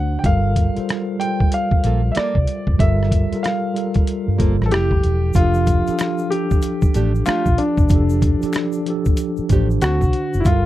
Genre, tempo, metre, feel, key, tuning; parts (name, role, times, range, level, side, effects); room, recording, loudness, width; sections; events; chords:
R&B, neo-soul; 94 BPM; 4/4; swing 63% on 16ths; F major; A4 = 440 Hz
clear concert grand piano; melody; 0.0-10.7 s; D4 to G5; -23 LUFS; left 1 dB
mellow tine electric piano; accompaniment; 0.0-10.7 s; D3 to C5; -23 LUFS; equal; medium stereo tremolo
vintage muted fingered electric bass; bass; 0.0-10.7 s; E1 to G2; -19 LUFS; equal
boom bap sampler-style drum kit; drums; 0.2-10.6 s; hi-hat, kick drum, rim click; -18 LUFS; equal
nylon-string guitar; second line; 1.8-10.0 s; A3 to A4; -25 LUFS; right 6 dB
egg shaker and finger snaps; percussion; 5.3-10.6 s; -37 LUFS; left 4 dB
light reverb; dark, warm production; -16 LUFS; side -14 dB against mid
0.0-5.3 A section; 5.3-10.7 A section
0.2 Gm9; 4.7 Fmaj9; 5.3 F69; 9.8 D7